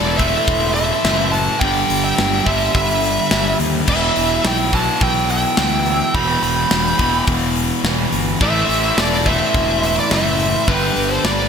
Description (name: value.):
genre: hard rock.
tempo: 106 BPM.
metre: 4/4.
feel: straight.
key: E minor.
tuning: A4 = 436 Hz.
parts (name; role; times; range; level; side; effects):
smooth overdriven lead guitar; melody; 0.0-11.5 s; B4 to B5; -20 LUFS; right 2 dB; none.
octave-fuzz lead guitar; second line; 0.0-11.5 s; G4 to G5; -26 LUFS; right 3 dB; distortion.
distorted electric guitar; riff; 0.0-11.5 s; E2 to A3; -23 LUFS; left 12 dB; overdrive.
overdriven semi-hollow guitar; riff; 0.0-11.5 s; E2 to A3; -25 LUFS; right 12 dB; none.
overdriven semi-hollow guitar; riff; 0.0-11.5 s; E2 to A3; -26 LUFS; right 1 dB; phaser.
fuzz fingered electric bass; bass; 0.0-11.5 s; E1 to D#2; -22 LUFS; equal; overdrive.
tight metal drum kit; drums; 0.2-11.4 s; crash cymbal, hi-hat, kick drum, snare drum; -21 LUFS; left 1 dB; gated reverb.
room: moderate plate reverb, RT60 2.4 s.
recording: bright 1980s-style digital production.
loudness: -14 LUFS.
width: side -6 dB against mid.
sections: 0.0-11.5 A section.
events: none.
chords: 0.0 Am; 1.6 G; 3.9 Em; 8.4 Am; 10.7 G5.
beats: 0.48 1.05 | 1.62 2.18 2.75 3.31 | 3.88 4.45 5.01 5.58 | 6.15 6.71 7.28 7.84 | 8.41 8.98 9.54 10.11 | 10.68 11.25.